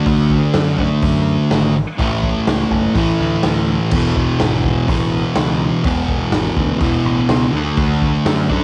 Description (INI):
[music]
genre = garage rock duo or trio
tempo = 124 BPM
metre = 4/4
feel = straight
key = E mixolydian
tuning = A4 = 442 Hz
[part]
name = fuzz guitar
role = riff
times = 0.0-8.6 s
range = E2 to D4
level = -18 LUFS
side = equal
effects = distortion, cassette tape
[part]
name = growling picked electric bass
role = bass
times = 0.1-8.6 s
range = E1 to F#2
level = -24 LUFS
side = equal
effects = overdrive
[part]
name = raw garage drum kit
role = drums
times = 0.1-8.6 s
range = crash cymbal, hi-hat, kick drum, snare drum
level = -24 LUFS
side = equal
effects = cassette tape
[sound]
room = light reverb, small room ambience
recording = home recording on cassette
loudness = -16 LUFS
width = mono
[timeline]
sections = 0.0-8.6 A section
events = none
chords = 0.0 D; 2.0 A5; 3.9 E; 7.5 D